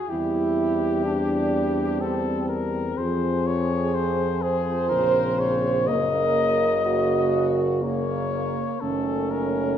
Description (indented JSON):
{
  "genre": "classical, hymn-like piece for brass band",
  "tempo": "62 BPM",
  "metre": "3/4",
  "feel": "rubato",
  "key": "unclear",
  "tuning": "A4 = 440 Hz",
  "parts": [
    { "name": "warm cornet", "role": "melody", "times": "0.0-9.8 s", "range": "G4 to Eb5", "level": "-28 LUFS", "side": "left 7 dB", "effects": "none" },
    { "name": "mellow French horn section", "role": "second line", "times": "0.0-9.8 s", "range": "Bb3 to C5", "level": "-25 LUFS", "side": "right 4 dB", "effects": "none" },
    { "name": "warm euphonium", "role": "accompaniment", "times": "0.1-9.8 s", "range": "A3 to C4", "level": "-31 LUFS", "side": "left 3 dB", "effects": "none" },
    { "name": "warm trombone", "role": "accompaniment", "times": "0.1-9.8 s", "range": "Db3 to G3", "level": "-30 LUFS", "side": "right 1 dB", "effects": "none" },
    { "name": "mellow tuba", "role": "bass", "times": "0.1-9.8 s", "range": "Gb1 to F2", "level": "-29 LUFS", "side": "left 1 dB", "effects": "none" }
  ],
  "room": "wet recital hall reverb, RT60 1.5 s",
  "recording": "recorded in a church or concert hall",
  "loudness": "-21 LUFS",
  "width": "side -9 dB against mid",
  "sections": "0.0-9.8 A section",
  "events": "none",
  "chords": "0.1 C/E; 3.0 Fm; 4.9 Bbm; 5.9 Gb; 8.8 Ebm7b5/Gb"
}